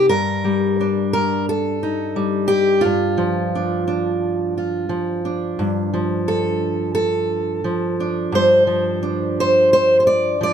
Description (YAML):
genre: folk, solo fingerstyle acoustic guitar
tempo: 87 BPM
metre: 4/4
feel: straight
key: unclear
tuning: A4 = 441 Hz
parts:
  - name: fingerpicked steel-string acoustic guitar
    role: solo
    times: 0.0-10.5 s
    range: G2 to D5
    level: -16 LUFS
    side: equal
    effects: none
room: little or no reverb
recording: dark, warm production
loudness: -17 LUFS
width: side -8 dB against mid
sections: 0.1-10.5 A section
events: none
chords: 0.1 Ebmaj7/G; 2.8 Dmadd11/G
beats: | 0.08 0.77 1.46 2.15 | 2.84 3.52 4.21 4.89 | 5.58 6.26 6.95 7.64 | 8.32 9.01 9.70 10.40